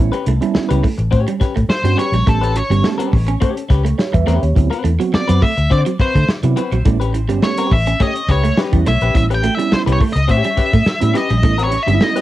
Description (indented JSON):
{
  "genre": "funk",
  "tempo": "105 BPM",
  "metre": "4/4",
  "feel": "straight",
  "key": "A mixolydian",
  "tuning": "A4 = 439 Hz",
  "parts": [
    { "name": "mellow tine electric piano", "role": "stabs", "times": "0.0-12.2 s", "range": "F#3 to E5", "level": "-21 LUFS", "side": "right 7 dB", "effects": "medium stereo tremolo, cassette tape" },
    { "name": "vintage muted fingered electric bass", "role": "bass", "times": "0.0-12.0 s", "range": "G1 to D3", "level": "-16 LUFS", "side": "equal", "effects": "none" },
    { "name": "clean electric guitar", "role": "accompaniment", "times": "0.1-12.2 s", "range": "C4 to C#5", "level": "-24 LUFS", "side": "left 7 dB", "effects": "cassette tape" },
    { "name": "electric guitar at the edge of break-up", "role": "riff", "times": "0.1-12.1 s", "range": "F#3 to C#4", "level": "-24 LUFS", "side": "right 7 dB", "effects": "lush chorus, cassette tape" },
    { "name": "warm soul drum kit", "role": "drums", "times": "0.1-12.2 s", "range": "hi-hat, kick drum, snare drum", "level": "-17 LUFS", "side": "equal", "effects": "cassette tape" },
    { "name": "octave-fuzz lead guitar", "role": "melody", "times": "1.7-12.2 s", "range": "A4 to G5", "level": "-20 LUFS", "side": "left 1 dB", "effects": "distortion, cassette tape, analog delay" }
  ],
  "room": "light reverb",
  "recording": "home recording on cassette",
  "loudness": "-13 LUFS",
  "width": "side -14 dB against mid",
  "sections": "0.0-12.2 A section",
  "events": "lead electric guitar solo 0.0-12.2",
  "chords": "0.0 A9; 4.6 D13; 6.9 A9"
}